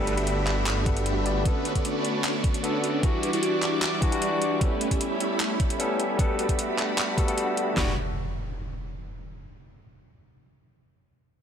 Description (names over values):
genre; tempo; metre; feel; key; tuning
future bass; 152 BPM; 4/4; half-time; E dorian; A4 = 440 Hz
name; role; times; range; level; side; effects
barky tine electric piano; accompaniment; 0.0-7.9 s; D3 to F#5; -29 LUFS; left 2 dB; overdrive, sidechain pumping, digital delay
dark studio string section; sustained chords; 0.0-8.0 s; G3 to D6; -36 LUFS; equal; sidechain pumping
supersaw chords; riff; 0.0-7.9 s; G3 to E5; -28 LUFS; right 1 dB; phaser, vintage 12-bit sampler grit, sidechain pumping, low-pass filter, digital delay
wide detuned saw bass; bass; 0.0-1.4, 7.8-8.0 s; E1 to G1; -28 LUFS; equal; chorus, sidechain pumping
pop drum kit; drums; 0.1-7.7 s; handclaps, hi-hat; -30 LUFS; equal; none
pop drum kit; drums; 0.9-7.9 s; handclaps, kick drum, snare drum; -26 LUFS; equal; overdrive
impact; sound effects; 7.8-9.3 s; none; -35 LUFS; equal; none
room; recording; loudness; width
light reverb, digital ambience; none; -23 LUFS; side -8 dB against mid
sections
0.0-7.8 A section; 7.8-9.3 B section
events
none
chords
0.0 Gmaj9; 1.5 Bm9; 3.0 Em9; 4.6 A9; 6.2 Gmaj9; 7.8 Em9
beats
0.27 0.67 1.06 | 1.45 1.85 2.24 2.64 | 3.03 3.43 3.82 4.22 | 4.61 5.01 5.40 5.80 | 6.19 6.59 6.98 7.38 | 7.77 8.16 8.56 8.95